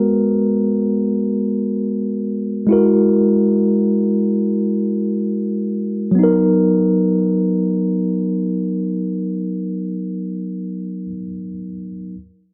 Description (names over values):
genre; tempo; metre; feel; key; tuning
reggae; free time; none; none; B major; A4 = 440 Hz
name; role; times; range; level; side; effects
mellow tine electric piano; accompaniment; 0.0-12.2 s; F#3 to A#4; -18 LUFS; equal; none
room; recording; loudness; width
moderate spring reverb, RT60 1.3 s; dark, warm production; -18 LUFS; mono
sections
0.0-6.2 A section; 6.2-9.6 B section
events
none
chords
0.0 G#m9; 2.7 F#9; 6.2 Bmaj7